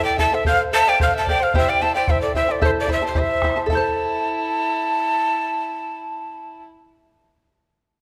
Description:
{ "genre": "andean folk, Andean ensemble", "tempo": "110 BPM", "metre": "2/4", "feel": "straight", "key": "A minor", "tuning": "A4 = 439 Hz", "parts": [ { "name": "breathy mellow quena", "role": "melody", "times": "0.0-6.6 s", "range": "C5 to A5", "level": "-23 LUFS", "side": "equal", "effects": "none" }, { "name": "dark violin", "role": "second line", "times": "0.0-6.6 s", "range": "E4 to E5", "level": "-30 LUFS", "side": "equal", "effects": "none" }, { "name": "charango", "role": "accompaniment", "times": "0.0-7.3 s", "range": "E4 to A5", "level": "-26 LUFS", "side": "equal", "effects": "none" }, { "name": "bombo", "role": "percussion", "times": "0.2-3.9 s", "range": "none", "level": "-26 LUFS", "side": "equal", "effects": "none" } ], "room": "moderate scoring stage reverb, RT60 1.8 s", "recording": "close, detailed microphones", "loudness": "-20 LUFS", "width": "mono", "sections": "0.0-3.7 A section; 3.7-5.9 B section", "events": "none", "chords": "0.4 F; 1.5 C; 2.6 Am" }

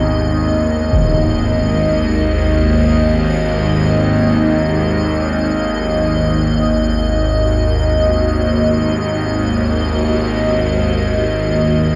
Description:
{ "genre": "dark ambient drone", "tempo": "free time", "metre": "none", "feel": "none", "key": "unclear", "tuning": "A4 = 441 Hz", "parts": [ { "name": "deep dark ambient pad", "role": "sustained chords", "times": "0.0-12.0 s", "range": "G#2 to D#5", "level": "-23 LUFS", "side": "equal", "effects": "chorus, built-in reverb, shimmer reverb" }, { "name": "bowed-like drone", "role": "drone", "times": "0.0-12.0 s", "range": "G#1 to D#2", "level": "-17 LUFS", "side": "equal", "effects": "built-in reverb, phaser" }, { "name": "icy glass pad", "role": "texture", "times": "0.0-12.0 s", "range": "D#5", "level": "-23 LUFS", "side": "equal", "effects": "chorus, built-in reverb, shimmer reverb" }, { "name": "impact", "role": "percussion", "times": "0.9-1.2 s", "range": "none", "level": "-23 LUFS", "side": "equal", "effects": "low-pass filter on sfx" } ], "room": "wet huge ambient reverb, RT60 7.3 s", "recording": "dark, warm production", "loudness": "-15 LUFS", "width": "mono", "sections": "0.0-12.0 A section", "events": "fade-out on ambient pad 0.0-12.0", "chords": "0.0 G#m; 0.9 D#m/G#" }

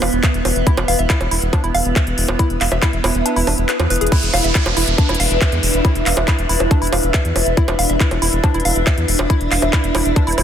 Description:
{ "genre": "psychedelic trance", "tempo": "139 BPM", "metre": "4/4", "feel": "straight", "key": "unclear", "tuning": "A4 = 440 Hz", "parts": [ { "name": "evolving wavetable pad", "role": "sustained chords", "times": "0.0-10.4 s", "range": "B3 to D4", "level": "-25 LUFS", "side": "right 2 dB", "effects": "phaser, built-in reverb, sidechain pumping" }, { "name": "woody wave-folded pluck", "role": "riff", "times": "0.0-10.4 s", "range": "D4 to F5", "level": "-23 LUFS", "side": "moving between left 3 dB and right 3 dB", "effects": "chorus, auto-pan, sidechain pumping, digital delay" }, { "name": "round analog bass", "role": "bass", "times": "0.0-10.4 s", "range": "E1 to E2", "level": "-20 LUFS", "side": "equal", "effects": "none" }, { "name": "techno drum kit", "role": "drums", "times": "0.0-10.4 s", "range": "bongos, crash cymbal, handclaps, hi-hat", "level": "-21 LUFS", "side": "equal", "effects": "none" }, { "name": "ethereal airy pad", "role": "texture", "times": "0.0-10.4 s", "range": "E4 to E5", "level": "-23 LUFS", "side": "equal", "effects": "ensemble chorus, built-in reverb, phaser, sidechain pumping" }, { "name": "electronic kick drum", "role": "drums", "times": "0.2-10.2 s", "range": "none", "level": "-15 LUFS", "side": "equal", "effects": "none" }, { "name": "downlifter", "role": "sound effects", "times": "4.1-7.6 s", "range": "none", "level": "-25 LUFS", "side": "right 2 dB", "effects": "none" } ], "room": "light reverb, digital ambience", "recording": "dense, heavily limited modern master", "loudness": "-14 LUFS", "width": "side -9 dB against mid", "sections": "0.0-4.1 A section; 4.1-10.4 B section", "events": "kick drops out 3.3-4.1; drum fill 3.9; drop 4.1-10.4", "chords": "0.0 E5" }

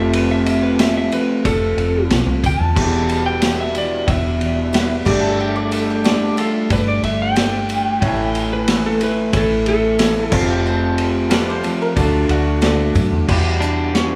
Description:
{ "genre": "folk rock and heartland rock", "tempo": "91 BPM", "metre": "4/4", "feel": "straight", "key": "unclear", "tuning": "A4 = 441 Hz", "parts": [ { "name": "electric slide guitar", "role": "melody", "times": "0.0-14.2 s", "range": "C#4 to A5", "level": "-25 LUFS", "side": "equal", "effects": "analog delay" }, { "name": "picked steel-string acoustic guitar", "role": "accompaniment", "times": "0.0-14.2 s", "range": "E2 to G4", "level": "-27 LUFS", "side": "equal", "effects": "none" }, { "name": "electric guitar through a small old amp", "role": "riff", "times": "0.0-14.2 s", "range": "E2 to G4", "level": "-23 LUFS", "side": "equal", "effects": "none" }, { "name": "deep dub fingered electric bass", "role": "bass", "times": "0.0-14.2 s", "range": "E1 to F#2", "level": "-24 LUFS", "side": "equal", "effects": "none" }, { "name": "vintage drum kit", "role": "drums", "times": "0.1-14.1 s", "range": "crash cymbal, hi-hat, kick drum, ride cymbal, snare drum", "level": "-24 LUFS", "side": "equal", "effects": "none" }, { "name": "tambourine", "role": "percussion", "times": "0.1-13.1 s", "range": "none", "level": "-41 LUFS", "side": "equal", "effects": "none" }, { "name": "bright upright piano", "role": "accompaniment", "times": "2.8-13.1 s", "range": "F#3 to G5", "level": "-31 LUFS", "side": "equal", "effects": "none" }, { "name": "mandolin", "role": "second line", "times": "5.1-12.9 s", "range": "F4 to D5", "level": "-29 LUFS", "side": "equal", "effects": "none" } ], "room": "light reverb", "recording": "small room reverb", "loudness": "-17 LUFS", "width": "mono", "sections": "0.0-13.3 A section", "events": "electric slide guitar solo 0.0-13.3", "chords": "0.0 F; 2.8 Em; 5.1 Gsus2; 8.0 A; 10.3 F; 12.0 D; 13.3 Em" }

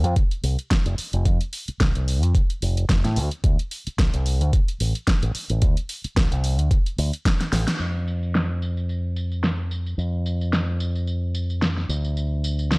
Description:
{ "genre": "nu-disco, nu disco", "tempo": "110 BPM", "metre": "4/4", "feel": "swing 55% on 16ths", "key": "unclear", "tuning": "A4 = 440 Hz", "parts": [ { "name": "fingered electric bass with an envelope filter", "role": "bass", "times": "0.0-12.8 s", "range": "F1 to A2", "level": "-22 LUFS", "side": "equal", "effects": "none" }, { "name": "pop drum kit", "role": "drums", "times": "0.0-12.8 s", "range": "crash cymbal, hi-hat, snare drum, tambourine", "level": "-26 LUFS", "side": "equal", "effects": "overdrive, low-pass filter on hats, low-pass filter on snare, low-pass filter on cymbals, low-pass filter on perc, low-pass filter on room" }, { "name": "electronic kick drum", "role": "drums", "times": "0.2-7.4 s", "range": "none", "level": "-20 LUFS", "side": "equal", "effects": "overdrive" } ], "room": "little or no reverb", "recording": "dry, gritty hardware recording, cassette tape", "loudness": "-20 LUFS", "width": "side -30 dB against mid", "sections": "0.0-7.8 A section; 7.8-12.8 B section", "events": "drum fill 7.4-7.8; band accent 7.7; filter sweep on drum 7.8-12.8", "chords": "none" }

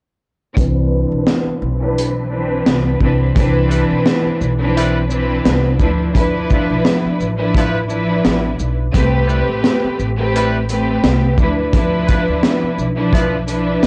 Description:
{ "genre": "hip hop, boom-bap hip-hop", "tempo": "86 BPM", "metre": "4/4", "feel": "swing 56% on 16ths", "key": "unclear", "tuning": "A4 = 440 Hz", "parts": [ { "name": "warm studio string section", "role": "accompaniment", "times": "0.5-13.9 s", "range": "E3 to B4", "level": "-20 LUFS", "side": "equal", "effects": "cassette tape, high-pass filter, low-pass filter" }, { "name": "upright bass", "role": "bass", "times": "0.6-13.9 s", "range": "A1 to D2", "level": "-22 LUFS", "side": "equal", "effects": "tube saturation" }, { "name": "crunchy breakbeat drum kit", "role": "drums", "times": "0.6-13.9 s", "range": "hi-hat, kick drum, shaker, snare drum", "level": "-19 LUFS", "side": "equal", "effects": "vintage 12-bit sampler grit" }, { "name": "clear horn section", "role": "stabs", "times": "3.7-13.4 s", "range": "F3 to B4", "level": "-26 LUFS", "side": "equal", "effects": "high-pass filter, low-pass filter, analog delay" } ], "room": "light reverb", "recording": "dry, gritty hardware recording, cassette tape", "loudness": "-16 LUFS", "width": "mono", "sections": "0.6-3.4 A section; 3.4-13.9 B section", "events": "filter sweep on string section 0.6-3.4", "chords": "0.6 Cmaj9; 5.8 Dm69; 8.9 Am9; 11.4 Dm69" }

